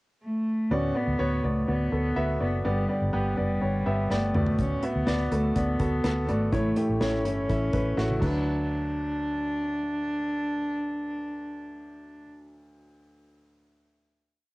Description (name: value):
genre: piano-driven pop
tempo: 124 BPM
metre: 4/4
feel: straight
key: D major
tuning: A4 = 440 Hz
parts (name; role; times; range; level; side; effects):
- dark cello; melody; 0.2-12.2 s; G3 to D4; -29 LUFS; equal; cassette tape
- clear baby grand piano; accompaniment; 0.7-14.5 s; D2 to E5; -30 LUFS; equal; cassette tape
- vintage muted fingered electric bass; bass; 0.7-12.2 s; F#1 to D2; -29 LUFS; equal; none
- unplugged drum kit; drums; 4.1-8.3 s; crash cymbal, hi-hat, kick drum, snare drum, toms; -32 LUFS; equal; cassette tape
room: moderate booth ambience, RT60 0.2 s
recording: home recording on cassette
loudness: -24 LUFS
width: side -21 dB against mid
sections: 0.0-0.7 pickup bar; 0.7-8.5 verse; 8.5-12.3 final hit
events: drum fill 4.1-4.6, 8.0-8.5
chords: 0.0 N.C.; 0.7 D6; 2.6 G; 4.3 D6; 6.5 A; 8.2 D6